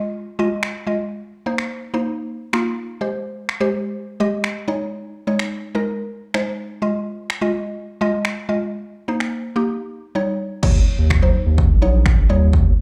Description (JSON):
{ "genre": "dance-pop", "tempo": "126 BPM", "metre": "4/4", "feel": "straight", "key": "unclear", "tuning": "A4 = 440 Hz", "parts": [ { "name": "mallet-like synth pluck", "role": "accompaniment", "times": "0.0-12.8 s", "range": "Gb3 to Eb5", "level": "-24 LUFS", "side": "equal", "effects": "chorus, phaser, sidechain pumping, slapback echo" }, { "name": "punchy analog drum machine", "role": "drums", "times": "0.6-12.6 s", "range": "crash cymbal, finger snaps, kick drum", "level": "-21 LUFS", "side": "equal", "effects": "none" }, { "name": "saturated sub bass", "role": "bass", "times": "10.6-12.7 s", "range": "Bb1 to Eb2", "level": "-18 LUFS", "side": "equal", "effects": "sidechain pumping" } ], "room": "light reverb, digital ambience", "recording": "live gig heard through the venue's PA, club reverb", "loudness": "-21 LUFS", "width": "mono", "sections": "0.0-10.6 A section; 10.6-12.8 B section", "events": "none", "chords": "0.0 Fm7; 1.1 Cm7; 3.0 Abmaj7; 4.7 Eb7sus4; 6.8 Fm7; 8.7 Cm7; 9.7 Eb7; 10.6 Ebm7; 12.3 Eb7" }